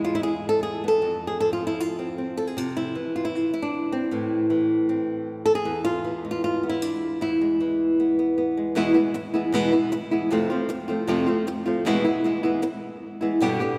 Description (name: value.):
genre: flamenco.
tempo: 155 BPM.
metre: 4/4.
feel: straight.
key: E phrygian dominant.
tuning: A4 = 440 Hz.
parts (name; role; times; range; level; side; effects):
flamenco guitar; solo; 0.0-13.8 s; E2 to A4; -24 LUFS; equal; none.
room: wet church reverb, RT60 3.1 s.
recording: recorded in a church or concert hall.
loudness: -24 LUFS.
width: mono.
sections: 0.0-8.8 A section; 8.8-13.8 B section.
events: none.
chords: 0.0 E; 1.0 F5; 2.6 C; 4.1 Am; 5.7 E; 10.3 F; 11.9 E.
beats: 0.23 0.62 | 1.01 1.40 1.78 2.17 | 2.56 2.95 3.33 3.72 | 4.11 4.50 4.88 5.27 | 5.66 6.04 6.43 6.82 | 7.21 7.59 7.98 8.37 | 8.76 9.14 9.53 9.92 | 10.30 10.69 11.08 11.46 | 11.85 12.24 12.63 13.01 | 13.40.